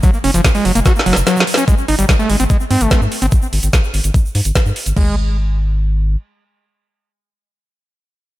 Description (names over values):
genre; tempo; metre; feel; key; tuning
psychedelic trance; 146 BPM; 4/4; straight; unclear; A4 = 435 Hz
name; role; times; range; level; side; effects
overdriven acid bass; riff; 0.0-5.2 s; F3 to Gb4; -17 LUFS; equal; distortion, auto-pan, sidechain pumping, tape echo
garage drum kit; drums; 0.0-5.1 s; crash cymbal, kick drum, toms; -13 LUFS; equal; overdrive
garage drum kit; drums; 0.0-4.9 s; hi-hat, snare drum; -19 LUFS; equal; overdrive
egg shaker; percussion; 0.0-4.9 s; none; -29 LUFS; right 3 dB; none
round analog bass; bass; 0.2-6.2 s; Gb1 to Ab2; -16 LUFS; equal; none
room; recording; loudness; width
digital ambience; none; -12 LUFS; side -16 dB against mid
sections
0.0-1.7 A section; 1.7-5.0 B section; 5.0-8.3 C section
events
drop 0.0-1.7; drum fill 0.9-1.7; kick drops out 1.3-1.7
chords
0.0 Gb5; 1.7 Ab5; 5.0 N.C.